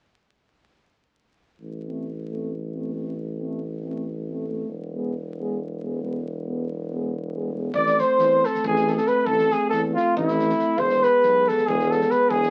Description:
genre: balkan folk, Balkan brass band.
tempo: 275 BPM (eighths).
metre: 7/8.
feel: straight.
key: A harmonic minor.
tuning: A4 = 438 Hz.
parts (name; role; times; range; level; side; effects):
warm tuba; bass; 1.6-12.5 s; E1 to E2; -32 LUFS; equal; none.
mellow euphonium; accompaniment; 1.9-12.5 s; B3 to C4; -34 LUFS; equal; none.
mellow euphonium; accompaniment; 1.9-12.5 s; G#3 to A3; -34 LUFS; equal; none.
warm flugelhorn; melody; 7.7-12.5 s; E4 to D5; -22 LUFS; equal; none.
loose indie drum kit; percussion; 7.7-12.5 s; kick drum, snare drum; -42 LUFS; equal; none.
clear alto saxophone; second line; 7.8-12.5 s; E4 to D5; -30 LUFS; equal; none.
room: moderate studio reverb, RT60 0.6 s.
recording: very old 78 rpm record, vinyl crackle.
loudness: -24 LUFS.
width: mono.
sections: 1.6-7.7 A section; 7.7-12.5 B section.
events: none.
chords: 1.6 Am; 4.7 E; 7.7 Am; 10.8 E.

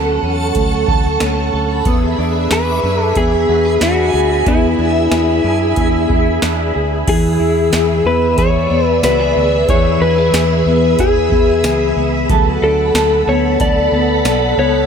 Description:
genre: dream pop.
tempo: 92 BPM.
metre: 4/4.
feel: straight.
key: E mixolydian.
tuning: A4 = 438 Hz.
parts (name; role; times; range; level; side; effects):
electric slide guitar; melody; 0.0-14.9 s; E4 to D5; -16 LUFS; left 2 dB; ping-pong delay.
string machine, violins; sustained chords; 0.0-14.9 s; G#4 to E6; -20 LUFS; right 1 dB; ensemble chorus.
semi-hollow electric guitar; arpeggios; 0.0-14.9 s; E3 to A4; -18 LUFS; equal; lush chorus, ping-pong delay.
vintage muted fingered electric bass; bass; 0.0-14.9 s; B1 to F#2; -20 LUFS; right 1 dB; none.
backwards swelling texture; texture; 0.1-11.0 s; D5 to E6; -25 LUFS; left 1 dB; built-in reverb, ping-pong delay.
booming analog drum machine; drums; 0.5-14.4 s; crash cymbal, hi-hat, kick drum, snare drum, tambourine; -20 LUFS; right 1 dB; none.
room: moderate huge ambient reverb, RT60 5.6 s.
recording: none.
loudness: -12 LUFS.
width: side -7 dB against mid.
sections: 0.0-7.1 A section; 7.1-14.9 B section.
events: none.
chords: 0.0 Dmaj7; 1.9 E7; 7.1 E; 12.3 D6.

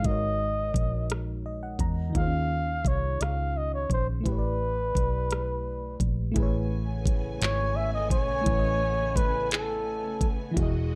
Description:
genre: slow six-eight R&B.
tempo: 57 BPM (dotted quarters).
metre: 6/8.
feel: straight.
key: unclear.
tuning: A4 = 440 Hz.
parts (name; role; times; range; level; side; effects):
breathy flugelhorn; melody; 0.0-10.3 s; A4 to F5; -32 LUFS; equal; plate reverb.
FM electric piano; accompaniment; 0.0-11.0 s; Eb3 to Bb5; -37 LUFS; equal; plate reverb.
smooth R&B drum kit; drums; 0.0-10.7 s; handclaps, hi-hat, kick drum, rim click; -30 LUFS; equal; none.
vintage muted fingered electric bass; bass; 0.1-11.0 s; E1 to Fb2; -32 LUFS; equal; none.
warm studio string section; sustained chords; 6.4-11.0 s; C#3 to G#5; -41 LUFS; equal; plate reverb.
room: light reverb.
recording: dark, warm production.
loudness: -28 LUFS.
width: mono.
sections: 0.0-6.4 A section; 6.4-11.0 B section.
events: FM electric piano fill 1.1-2.1.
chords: 0.0 Ab9sus4; 2.1 Eb9sus4; 4.3 A9sus4; 6.4 Amaj9.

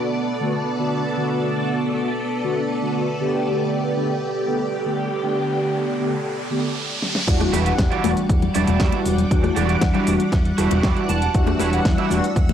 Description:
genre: nu-disco, nu disco.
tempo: 118 BPM.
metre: 4/4.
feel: straight.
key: E minor.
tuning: A4 = 437 Hz.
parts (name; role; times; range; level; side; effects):
mellow synth brass; accompaniment; 0.0-12.2 s; D3 to F#5; -23 LUFS; equal; chorus, sidechain pumping, cassette tape, analog delay.
string machine, full ensemble; sustained chords; 0.0-12.5 s; G3 to E6; -24 LUFS; right 1 dB; phaser, ensemble chorus, sidechain pumping, cassette tape.
riser and impact; sound effects; 4.8-9.3 s; none; -30 LUFS; right 1 dB; none.
pop drum kit; drums; 7.0-12.5 s; crash cymbal, hi-hat, rim click, shaker, snare drum; -28 LUFS; equal; overdrive, low-pass filter on snare, cassette tape, low-pass filter on hats, low-pass filter on cymbals, low-pass filter on perc, low-pass filter on room.
fingered electric bass with an envelope filter; bass; 7.3-12.5 s; E1 to E2; -23 LUFS; equal; none.
electronic kick drum; drums; 7.3-12.5 s; none; -20 LUFS; equal; overdrive, cassette tape.
electric guitar at the edge of break-up; riff; 7.4-12.4 s; E4 to A5; -27 LUFS; right 11 dB; analog chorus, cassette tape, analog delay.
congas; percussion; 7.4-12.5 s; none; -26 LUFS; left 12 dB; none.
room: light reverb.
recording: home recording on cassette.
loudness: -18 LUFS.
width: side -9 dB against mid.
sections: 0.0-7.3 A section; 7.3-12.5 B section.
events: riser 4.8-7.3; drum fill 7.0; drop 7.3-12.5; impact 7.3-9.3; clean electric guitar fill 10.6-11.3.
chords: 0.0 Bm7; 3.2 A9sus4; 7.3 Em9.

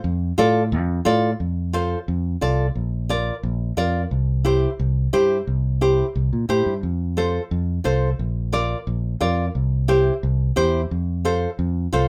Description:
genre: latin.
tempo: 177 BPM.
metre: 4/4.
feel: straight.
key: F major.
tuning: A4 = 440 Hz.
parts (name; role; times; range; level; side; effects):
fingered electric bass; bass; 0.0-12.1 s; Bb1 to Bb2; -24 LUFS; equal; none.
nylon-string guitar; accompaniment; 0.4-12.1 s; E4 to D5; -22 LUFS; equal; none.
room: moderate studio reverb, RT60 0.6 s.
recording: none.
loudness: -22 LUFS.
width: mono.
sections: 0.0-1.4 A section; 1.4-12.1 B section.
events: none.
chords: 0.0 F; 2.8 Bb; 4.1 C; 6.8 F; 8.2 Bb; 9.6 C; 10.9 F.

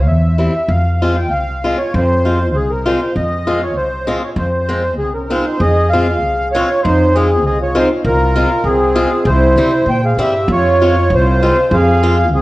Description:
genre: alpine folk, alpine dance band.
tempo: 98 BPM.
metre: 2/4.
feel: straight.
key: F minor.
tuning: A4 = 438 Hz.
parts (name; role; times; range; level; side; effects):
accordion; melody; 0.0-12.4 s; Ab4 to G5; -16 LUFS; equal; light tremolo tuning, slapback echo.
upright bass; bass; 0.0-12.4 s; C2 to C3; -16 LUFS; equal; none.
picked swing-style acoustic guitar; accompaniment; 0.4-12.2 s; G3 to F4; -20 LUFS; left 1 dB; none.
dark trumpet; second line; 5.0-12.4 s; C4 to C5; -18 LUFS; right 2 dB; none.
room: moderate recital hall reverb, RT60 1.4 s.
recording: worn, warbling old tape, cassette tape, warbly pitch drift.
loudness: -12 LUFS.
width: side -18 dB against mid.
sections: 0.0-5.6 A section; 5.6-12.4 A section.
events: none.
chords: 0.0 C; 0.7 Fm; 9.3 C; 10.5 Fm.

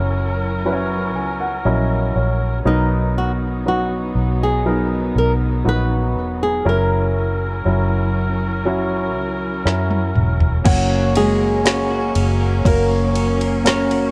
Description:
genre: pop ballad.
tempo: 60 BPM.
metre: 4/4.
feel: straight.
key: unclear.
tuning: A4 = 439 Hz.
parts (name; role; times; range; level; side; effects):
warm grand piano; accompaniment; 0.0-14.1 s; B2 to G#5; -24 LUFS; equal; none.
warm studio string section; sustained chords; 0.0-14.1 s; F#3 to A#4; -30 LUFS; equal; none.
vintage muted fingered electric bass; bass; 0.0-14.1 s; E1 to F#2; -23 LUFS; equal; none.
flamenco guitar; melody; 2.7-14.1 s; F#3 to C#5; -24 LUFS; equal; none.
smooth R&B drum kit; drums; 9.7-14.1 s; crash cymbal, kick drum, ride cymbal, snare drum, toms; -24 LUFS; equal; vintage 12-bit sampler grit.
twelve-string electric guitar; arpeggios; 10.7-14.1 s; F#2 to F#4; -30 LUFS; equal; tape echo.
room: light reverb, small room ambience.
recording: none.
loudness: -19 LUFS.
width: mono.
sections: 0.0-10.7 A section; 10.7-14.1 B section.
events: grand piano fill 0.7-2.7; drum fill 9.7-10.7.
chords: 0.0 F#7; 2.7 Bmaj7; 6.7 F#7; 10.7 F#.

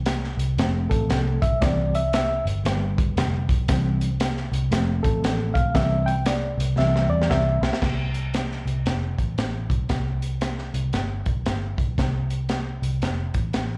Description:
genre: uptempo 1960s-style soul.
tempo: 116 BPM.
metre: 4/4.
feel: swing 62% on 8ths.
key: C major.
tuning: A4 = 440 Hz.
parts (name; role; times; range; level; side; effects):
vintage muted picked electric bass; bass; 0.0-13.8 s; E1 to E2; -28 LUFS; equal; none.
crunchy breakbeat drum kit; drums; 0.1-13.7 s; crash cymbal, hi-hat, kick drum, snare drum; -28 LUFS; equal; none.
mellow reed electric piano; accompaniment; 0.6-7.8 s; D3 to G5; -27 LUFS; equal; fast tremolo, slapback echo.
room: small room ambience.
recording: live gig heard through the venue's PA, club reverb.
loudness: -24 LUFS.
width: mono.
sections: 0.0-7.8 A section; 7.8-13.8 B section.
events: reed electric piano solo 0.0-7.8; drum fill 6.8-7.8.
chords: 0.0 N.C.; 0.6 F; 1.6 C; 2.7 G; 3.7 C; 4.7 F; 5.8 C; 7.8 N.C.; 8.9 F; 9.9 N.C.; 10.9 G; 12.0 N.C.; 13.0 F.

